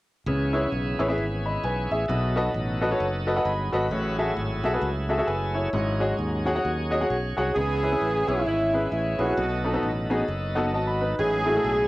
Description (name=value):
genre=uptempo gospel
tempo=132 BPM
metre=4/4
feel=swing 60% on 8ths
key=C# minor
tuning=A4 = 440 Hz
part: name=clear baby grand piano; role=accompaniment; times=0.3-11.9 s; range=G#2 to B5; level=-26 LUFS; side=left 1 dB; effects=cassette tape
part: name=bright tonewheel organ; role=sustained chords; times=0.3-11.9 s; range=D#3 to C#5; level=-32 LUFS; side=right 1 dB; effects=fast rotary speaker, overdrive, cassette tape
part: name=modern bright fingered electric bass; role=bass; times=0.3-11.9 s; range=F#1 to D#2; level=-29 LUFS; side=equal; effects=none
part: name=warm alto saxophone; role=melody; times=7.5-11.9 s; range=E4 to G#4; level=-25 LUFS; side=right 2 dB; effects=cassette tape
part: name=mellow French horn section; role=sustained chords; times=7.5-11.9 s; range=E4 to E5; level=-38 LUFS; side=equal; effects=none
part: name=warm saxophone section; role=melody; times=7.6-11.9 s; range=G#3 to G#4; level=-30 LUFS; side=left 1 dB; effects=cassette tape, tape echo
room=light reverb, small room ambience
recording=home recording on cassette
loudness=-23 LUFS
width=side -18 dB against mid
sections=0.3-7.6 A section; 7.6-11.9 B section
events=grand piano fill 3.0-3.9, 10.3-11.2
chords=0.3 C#m7; 2.1 B7; 3.9 F#m9; 5.7 G#7sus4; 7.6 C#m7; 9.4 B7; 11.2 F#m9/A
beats=| 0.26 0.72 1.18 1.63 | 2.09 2.54 3.00 3.45 | 3.91 4.36 4.82 5.27 | 5.73 6.19 6.64 7.10 | 7.55 8.01 8.46 8.92 | 9.37 9.83 10.28 10.74 | 11.19 11.65